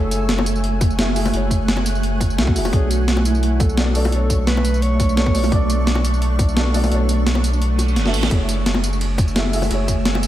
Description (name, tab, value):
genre	liquid drum and bass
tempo	172 BPM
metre	4/4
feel	swing 54% on 16ths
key	unclear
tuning	A4 = 440 Hz
part	dark alto saxophone	melody	0.0-6.0 s	E4 to D5	-28 LUFS	equal	analog delay
part	felt-muted upright piano	accompaniment	0.0-10.3 s	A3 to G#5	-26 LUFS	left 1 dB	diffuse ambient delay
part	shimmering ambient pad	sustained chords	0.0-10.3 s	A3 to F#6	-25 LUFS	right 2 dB	chorus, built-in reverb, sidechain pumping
part	warm sub bass	bass	0.0-10.3 s	E1 to C#2	-20 LUFS	equal	none
part	breakbeat sampler-style drum kit	drums	0.1-10.3 s	hi-hat, ride cymbal, snare drum, tambourine	-23 LUFS	right 1 dB	overdrive
part	bongos	percussion	0.4-10.2 s	none	-30 LUFS	left 3 dB	none
part	electronic kick drum	drums	0.8-10.0 s	none	-18 LUFS	equal	overdrive
part	reverse cymbal	sound effects	7.8-8.3 s	none	-31 LUFS	right 7 dB	none
room	light reverb, digital ambience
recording	none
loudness	-16 LUFS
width	side -13 dB against mid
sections	0.0-10.3 A section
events	kick drops out 6.9-8.3; reverse cymbal 7.8-8.3; drum fill 8.0-8.3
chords	0.0 F#m9; 2.7 Bm9; 8.3 F#m9